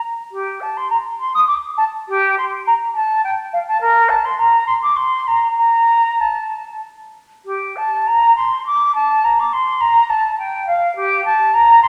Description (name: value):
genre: classical, baroque-style fantasia for unaccompanied flute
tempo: 92-107 BPM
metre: 3/4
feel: rubato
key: unclear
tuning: A4 = 437 Hz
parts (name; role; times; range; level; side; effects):
- concert flute; solo; 0.3-11.9 s; G4 to Eb6; -16 LUFS; equal; none
room: wet recital hall reverb, RT60 1.6 s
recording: none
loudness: -17 LUFS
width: mono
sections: 0.3-11.9 A section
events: none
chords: none